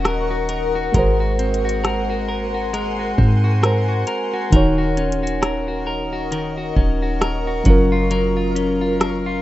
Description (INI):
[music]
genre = contemporary R&B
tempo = 67 BPM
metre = 4/4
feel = swing 58% on 16ths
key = Eb dorian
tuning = A4 = 442 Hz
[part]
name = mellow FM electric piano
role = accompaniment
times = 0.0-9.4 s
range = Eb3 to Db5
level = -23 LUFS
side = right 1 dB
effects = chorus
[part]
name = granular cloud pad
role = sustained chords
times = 0.0-9.4 s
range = Bb4 to Db6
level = -26 LUFS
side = left 2 dB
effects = built-in reverb, tremolo, plate reverb
[part]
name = clean electric guitar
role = arpeggios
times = 0.0-9.4 s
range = Eb3 to Bb4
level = -24 LUFS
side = left 2 dB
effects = tape echo
[part]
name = clean 808-style bass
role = bass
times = 0.0-9.4 s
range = Eb1 to Ab2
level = -22 LUFS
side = equal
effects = none
[part]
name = smooth R&B drum kit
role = drums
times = 0.1-9.2 s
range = hi-hat, kick drum, rim click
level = -19 LUFS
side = equal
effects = none
[sound]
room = moderate studio reverb, RT60 0.6 s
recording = rough home demo mix, nothing above 7.9 kHz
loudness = -17 LUFS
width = side -15 dB against mid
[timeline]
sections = 0.0-9.4 A section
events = none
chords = 0.0 Ebm7; 0.9 Ab9; 4.5 Ebm7; 7.7 Gbmaj7